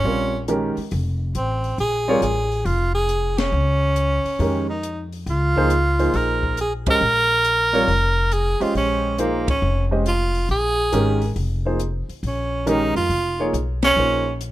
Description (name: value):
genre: modal jazz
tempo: 138 BPM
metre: 4/4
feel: swing 67% on 8ths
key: Bb dorian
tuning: A4 = 440 Hz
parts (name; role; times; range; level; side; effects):
- breathy tenor saxophone; melody; 0.0-14.4 s; Bb3 to Bb4; -20 LUFS; right 2 dB; none
- warm concert grand piano; accompaniment; 0.0-14.2 s; Eb3 to Eb5; -23 LUFS; right 1 dB; none
- upright bass; bass; 0.0-14.5 s; F1 to F2; -23 LUFS; left 1 dB; none
- compact cocktail drum kit; drums; 0.5-14.5 s; hi-hat, kick drum, ride cymbal, snare drum; -30 LUFS; left 1 dB; none
room: small room ambience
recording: rough home demo mix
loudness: -18 LUFS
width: side -15 dB against mid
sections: 0.0-14.5 A section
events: band accent 3.3, 6.8, 9.4, 13.8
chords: 0.0 Bbm9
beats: | 0.05 0.49 0.92 1.36 | 1.79 2.23 2.66 3.10 | 3.53 3.97 4.40 4.84 | 5.27 5.71 6.14 6.58 | 7.01 7.45 7.88 8.32 | 8.75 9.19 9.62 10.06 | 10.49 10.93 11.36 11.80 | 12.23 12.67 13.10 13.54 | 13.97 14.41